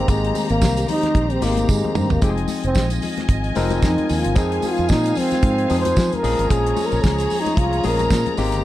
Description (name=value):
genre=disco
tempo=112 BPM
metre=4/4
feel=swing 56% on 16ths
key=F minor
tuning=A4 = 440 Hz
part: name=breathy trombone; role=melody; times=0.0-8.4 s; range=Ab3 to C5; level=-22 LUFS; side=right 1 dB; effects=none
part: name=barky tine electric piano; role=accompaniment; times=0.0-8.6 s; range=Eb3 to Bb4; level=-24 LUFS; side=left 4 dB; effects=overdrive
part: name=dark studio string section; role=sustained chords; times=0.0-8.6 s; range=F4 to Bb5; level=-28 LUFS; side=left 1 dB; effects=none
part: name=fingered electric bass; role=bass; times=0.0-8.6 s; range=F1 to F3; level=-22 LUFS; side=right 1 dB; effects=none
part: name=damped 70s drum kit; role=drums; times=0.1-8.6 s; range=hi-hat, kick drum, snare drum, toms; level=-22 LUFS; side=equal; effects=none
part: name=tambourine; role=percussion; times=0.1-8.6 s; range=none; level=-36 LUFS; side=right 9 dB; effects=none
part: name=congas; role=percussion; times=0.3-8.5 s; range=none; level=-32 LUFS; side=left 6 dB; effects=none
room=little or no reverb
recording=none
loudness=-17 LUFS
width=side -14 dB against mid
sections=0.0-8.6 A section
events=trombone solo 0.0-8.6; drum fill 1.7-2.2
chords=0.0 Abmaj9; 2.2 Fm7; 6.2 Bbm7